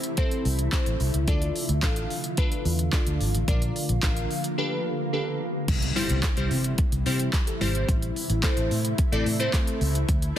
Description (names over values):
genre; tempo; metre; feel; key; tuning
dance-pop; 109 BPM; 4/4; straight; unclear; A4 = 440 Hz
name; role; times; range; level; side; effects
shimmering ambient pad; sustained chords; 0.0-10.4 s; C3 to G4; -32 LUFS; equal; chorus, built-in reverb, sidechain pumping
deep house drum kit; drums; 0.0-10.4 s; crash cymbal, handclaps, hi-hat, kick drum, snare drum; -26 LUFS; equal; none
glassy digital keys; accompaniment; 0.2-10.4 s; G3 to F5; -30 LUFS; left 1 dB; chorus, sidechain pumping
vintage muted fingered electric bass; bass; 0.5-10.3 s; Ab1 to C3; -26 LUFS; equal; sidechain pumping
impact; sound effects; 5.7-7.9 s; none; -38 LUFS; equal; none
room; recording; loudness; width
little or no reverb; dense, heavily limited modern master; -23 LUFS; side -11 dB against mid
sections
0.0-5.7 A section; 5.7-10.4 B section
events
break 4.6-5.7; impact 5.7-7.9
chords
0.0 Am; 1.3 Dm; 3.5 Bb; 4.6 Gadd9; 5.7 C; 7.9 Am